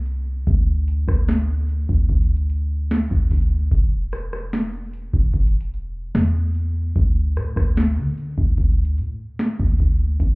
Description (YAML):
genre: contemporary R&B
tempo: 74 BPM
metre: 4/4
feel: straight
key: unclear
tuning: A4 = 440 Hz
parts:
  - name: clean 808-style bass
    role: bass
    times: 0.0-10.3 s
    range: E1 to D3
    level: -20 LUFS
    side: equal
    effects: none
  - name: booming analog drum machine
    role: drums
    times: 0.1-10.3 s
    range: hi-hat, kick drum, rim click, snare drum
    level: -20 LUFS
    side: equal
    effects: none
room: little or no reverb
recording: heard muffled through a wall, club ambience, EQ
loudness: -18 LUFS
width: side -28 dB against mid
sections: 0.0-10.3 A section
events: none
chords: none